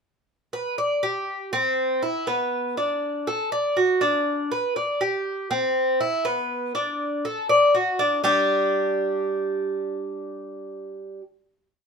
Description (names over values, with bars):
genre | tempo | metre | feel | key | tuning
latin | 120 BPM | 4/4 | straight | G major | A4 = 436 Hz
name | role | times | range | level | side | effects
Cuban tres | solo | 0.5-11.2 s | G3 to D5 | -22 LUFS | equal | none
room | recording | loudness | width
light reverb | minimal, uncompressed stereo recording | -21 LUFS | side -5 dB against mid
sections
0.3-8.2 montuno (vamp); 8.2-11.9 final chord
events
none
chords
0.3 G; 1.3 C; 2.3 Bm; 3.3 D; 4.3 G; 5.3 C; 6.3 Bm; 7.3 D; 8.2 G5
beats
| 0.28 0.78 1.27 1.77 | 2.27 2.77 3.27 3.77 | 4.27 4.76 5.26 5.76 | 6.26 6.75 7.25 7.75 | 8.25 8.75 9.24 9.74 | 10.24 10.74